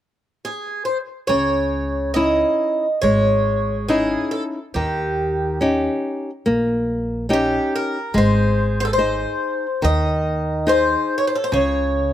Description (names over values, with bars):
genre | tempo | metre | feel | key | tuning
fado-style ballad | 70 BPM | 4/4 | rubato | C# harmonic minor | A4 = 440 Hz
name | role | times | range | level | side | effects
picked twelve-string acoustic guitar | melody | 0.4-12.1 s | G4 to D#5 | -21 LUFS | equal | slapback echo
nylon-string guitar | accompaniment | 1.3-12.1 s | C#3 to B#4 | -21 LUFS | left 1 dB | slapback echo
upright bass | bass | 1.3-12.1 s | G#1 to D#2 | -24 LUFS | right 1 dB | none
room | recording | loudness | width
little or no reverb | recorded outdoors, with no room sound | -18 LUFS | side -11 dB against mid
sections
0.0-1.3 A section; 1.3-12.1 B section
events
none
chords
0.0 N.C.; 1.3 C#madd9; 4.7 D#7; 8.1 G#; 11.5 N.C.